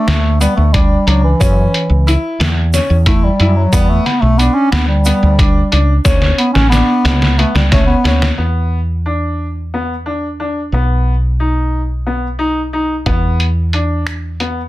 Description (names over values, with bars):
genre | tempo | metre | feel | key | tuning
progressive instrumental, band music in an uneven meter | 180 BPM (eighths) | 7/8 | straight | E dorian | A4 = 440 Hz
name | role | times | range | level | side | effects
mellow bass clarinet | melody | 0.0-8.3 s | E3 to C#4 | -15 LUFS | equal | none
bright baby grand piano | arpeggios | 0.0-14.6 s | B3 to E4 | -20 LUFS | left 2 dB | plate reverb
woody fretless electric bass | bass | 0.1-14.7 s | A1 to F#2 | -14 LUFS | equal | wide subtle chorus
lo-fi sampler-style drum kit | drums | 0.1-8.4, 13.1-14.6 s | finger snaps, hi-hat, kick drum, snare drum | -15 LUFS | equal | none
tube shaker | percussion | 0.4-6.9 s | none | -28 LUFS | right 8 dB | none
room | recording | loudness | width
light reverb | dense, heavily limited modern master | -11 LUFS | side -17 dB against mid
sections
0.0-8.4 A section; 8.4-14.7 B section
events
bass clarinet solo 0.0-8.4; drum fill 6.1-8.4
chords
0.0 N.C.; 1.4 F#5; 3.7 Em7 (rootless); 6.1 D5; 8.4 E5; 10.7 B; 13.1 E5